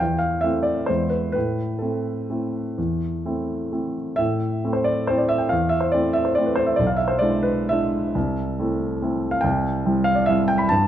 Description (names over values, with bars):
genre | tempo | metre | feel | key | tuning
classical, piano waltz | 115-154 BPM | 3/4 | rubato | A minor | A4 = 442 Hz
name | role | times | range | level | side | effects
warm grand piano | solo | 0.0-10.9 s | B1 to B5 | -20 LUFS | equal | none
room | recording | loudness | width
moderate recital hall reverb, RT60 1.6 s | close, detailed microphones | -20 LUFS | side -11 dB against mid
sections
0.0-4.2 A section; 4.2-10.9 A section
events
none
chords
0.0 Am/E; 0.9 E; 1.3 Am; 6.8 E7/B; 8.2 Am/C; 9.4 C